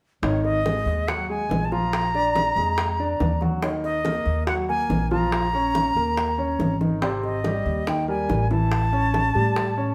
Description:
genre	Afro-Cuban jazz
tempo	141 BPM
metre	4/4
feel	straight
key	unclear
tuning	A4 = 440 Hz
part	bright reedy concert flute	melody	0.2-9.9 s	C#5 to A#5	-27 LUFS	equal	none
part	clear concert grand piano	accompaniment	0.2-9.9 s	B#2 to D5	-29 LUFS	equal	none
part	upright bass	bass	0.2-9.9 s	G#1 to A2	-29 LUFS	equal	none
part	bongos	percussion	0.2-9.8 s	none	-34 LUFS	equal	none
part	congas	percussion	0.2-9.9 s	none	-31 LUFS	equal	none
room	wet studio reverb, RT60 1.0 s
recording	band playing live in one room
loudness	-23 LUFS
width	mono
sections	0.2-9.9 A section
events	none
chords	0.2 G#5; 1.9 A#7; 3.6 D#m; 5.3 A#m; 6.2 D#5; 7.0 G#maj9; 8.7 A7

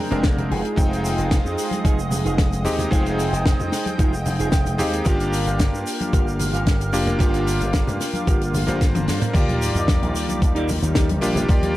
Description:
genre	nu-disco, nu disco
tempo	112 BPM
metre	4/4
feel	straight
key	Eb major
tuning	A4 = 443 Hz
part	bright electric grand piano	accompaniment	0.0-11.8 s	Ab3 to G5	-26 LUFS	equal	sidechain pumping, digital delay
part	lush unison pad	sustained chords	0.0-11.8 s	Eb3 to G5	-30 LUFS	right 1 dB	chorus, sidechain pumping
part	mellow electric guitar	riff	0.1-11.7 s	C4 to G5	-29 LUFS	right 2 dB	analog chorus, digital delay
part	slap bass with an envelope filter	bass	0.1-11.8 s	F1 to G2	-24 LUFS	equal	none
part	tight funk drum kit	drums	0.1-11.7 s	crash cymbal, hi-hat, shaker, snare drum, toms	-27 LUFS	left 2 dB	none
part	electronic kick drum	drums	0.2-11.6 s	none	-19 LUFS	equal	overdrive
part	congas	percussion	0.4-11.7 s	none	-30 LUFS	left 1 dB	none
part	sub drop	sound effects	9.3-11.5 s	none	-29 LUFS	equal	none
room	small room ambience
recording	dark, warm production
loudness	-18 LUFS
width	side -16 dB against mid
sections	0.0-9.3 A section; 9.3-11.8 B section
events	clean electric guitar fill 4.3-5.1; drum fill 8.8-9.3; band accent 9.1; drop 9.3-11.8; impact 9.3-11.5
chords	0.0 Bb13; 0.5 Fm7; 5.1 Gm7; 9.3 Ebmaj7

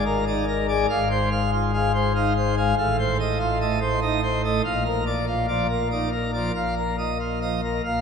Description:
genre	classical, organ toccata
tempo	96 BPM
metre	3/4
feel	straight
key	unclear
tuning	A4 = 440 Hz
part	pipe organ, plenum	solo	0.0-8.0 s	Ab1 to F5	-21 LUFS	left 1 dB	none
room	wet church reverb, RT60 3.4 s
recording	minimal, uncompressed stereo recording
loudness	-21 LUFS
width	side -6 dB against mid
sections	0.0-8.0 A section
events	none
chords	0.0 Bb7/Ab; 0.9 Fm/Ab; 2.8 F7/A; 4.6 Bb; 6.5 Bbsus4

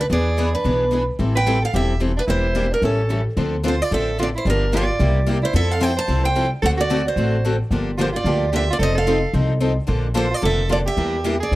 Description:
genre	acoustic string swing (jazz manouche)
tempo	221 BPM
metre	4/4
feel	swing 56% on 8ths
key	A minor, D minor from 3.4 s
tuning	A4 = 442 Hz
part	picked steel-string acoustic guitar	melody	0.0-11.6 s	A4 to A5	-23 LUFS	right 2 dB	none
part	clear soprano saxophone	second line	0.0-11.6 s	C#4 to C5	-26 LUFS	right 2 dB	none
part	upright bass	bass	0.0-11.6 s	E1 to F2	-21 LUFS	equal	none
part	picked old ladder-braced acoustic guitar	accompaniment	0.1-11.6 s	C3 to B4	-28 LUFS	right 2 dB	none
part	picked steel-string acoustic guitar	accompaniment	0.1-11.6 s	C3 to A4	-25 LUFS	left 4 dB	none
room	small room ambience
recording	dry, close 1970s-style studio recording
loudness	-17 LUFS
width	side -17 dB against mid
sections	0.0-3.4 A section; 3.4-11.6 B section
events	none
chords	0.1 E7; 1.2 Am9; 2.3 Em7b5; 2.8 A7; 3.4 Dm7; 4.5 Gm7; 5.0 C7; 5.5 Fmaj7; 6.6 D7; 7.7 Gm7; 8.8 F7; 9.9 Bbmaj7; 11.0 Em7b5

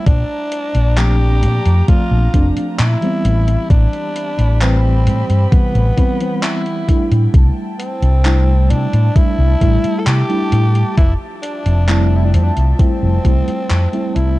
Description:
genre	vaporwave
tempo	66 BPM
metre	4/4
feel	straight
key	C major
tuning	A4 = 441 Hz
part	growling tenor saxophone	melody	0.0-14.4 s	B3 to A4	-23 LUFS	equal	tape echo
part	mellow FM electric piano	accompaniment	0.0-14.4 s	C3 to B4	-21 LUFS	right 1 dB	tremolo, analog chorus, vintage 12-bit sampler grit
part	dark studio string section	sustained chords	0.0-14.4 s	F3 to B5	-30 LUFS	equal	none
part	fingered electric bass	bass	0.1-14.4 s	F1 to C3	-13 LUFS	equal	tube saturation
part	electronic kick drum	drums	0.1-13.4 s	none	-12 LUFS	equal	overdrive, vintage 12-bit sampler grit, small room ambience
part	gated 80s digital drum machine	drums	0.1-14.3 s	handclaps, hi-hat	-25 LUFS	equal	gated reverb, overdrive, vintage 12-bit sampler grit, small room ambience
room	little or no reverb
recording	dark, warm production, cassette tape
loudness	-12 LUFS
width	side -18 dB against mid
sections	0.0-14.4 A section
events	fade-out 12.2-14.4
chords	0.1 Bbmaj9; 3.2 Am9; 7.3 C6; 11.0 Fmaj9

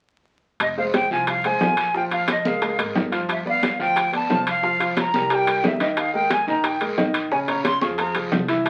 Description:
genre	latin, salsa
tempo	179 BPM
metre	4/4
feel	straight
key	F minor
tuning	A4 = 440 Hz
part	bright silver concert flute	melody	0.6-8.7 s	Eb5 to Db6	-24 LUFS	equal	none
part	upright bass	bass	0.6-8.7 s	F1 to F2	-40 LUFS	equal	none
part	bongos	percussion	0.6-8.7 s	none	-33 LUFS	equal	none
part	congas	percussion	0.6-8.7 s	none	-31 LUFS	equal	none
part	guiro	percussion	0.6-8.7 s	none	-38 LUFS	equal	none
part	timbales	percussion	0.6-8.7 s	none	-28 LUFS	equal	none
part	clear grand piano	accompaniment	0.8-8.7 s	Db3 to F5	-28 LUFS	equal	none
room	wet studio ambience, RT60 0.5 s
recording	very old 78 rpm record, vinyl crackle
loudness	-22 LUFS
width	mono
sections	0.6-8.7 A section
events	drum fill 5.5-6.0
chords	0.6 Fm; 1.9 Bbm7; 3.3 G7; 4.6 C7sus4; 5.3 C5; 6.0 Ebsus4; 7.3 Bbm7

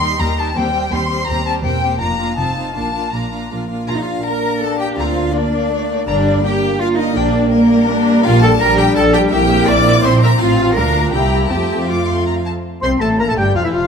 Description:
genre	quick classical-period movement for symphony orchestra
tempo	165 BPM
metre	3/4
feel	straight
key	Bb major, F major from 8.3 s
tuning	A4 = 440 Hz
part	rich chamber violin section	melody	0.0-13.9 s	E5 to D6	-23 LUFS	left 4 dB	none
part	rich chamber violin section	second line	0.0-13.9 s	E4 to D6	-22 LUFS	left 6 dB	none
part	warm chamber viola section	accompaniment	0.0-13.9 s	E3 to E4	-21 LUFS	right 1 dB	none
part	rich chamber cello section	bass	0.0-13.9 s	Eb2 to D5	-18 LUFS	right 3 dB	none
part	rich chamber double bass section	bass	0.0-13.9 s	E1 to F2	-19 LUFS	right 1 dB	none
part	dark French horn section	sustained chords	3.9-13.9 s	E3 to F4	-21 LUFS	left 3 dB	none
part	clear clarinet	second line	12.8-13.9 s	E4 to C5	-21 LUFS	left 2 dB	none
part	mellow hollow silver concert flute	second line	12.8-13.9 s	E5 to C6	-24 LUFS	left 2 dB	none
part	warm oboe	second line	12.8-13.9 s	E5 to C6	-23 LUFS	right 1 dB	none
room	moderate scoring stage reverb, RT60 1.8 s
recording	none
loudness	-13 LUFS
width	side -6 dB against mid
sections	0.0-3.9 A section; 3.9-12.6 A section; 12.6-13.9 B section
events	none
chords	0.0 Eb; 0.6 Cm/Eb; 1.6 C7/E; 2.0 Bb/F; 2.4 F7; 2.8 Bb; 5.0 Bb/D; 6.1 Gm; 7.2 Gm/Bb; 8.3 Gm7/Bb; 9.3 C7/Bb; 10.4 F/A; 10.8 Bb/D; 11.1 C7; 11.5 F

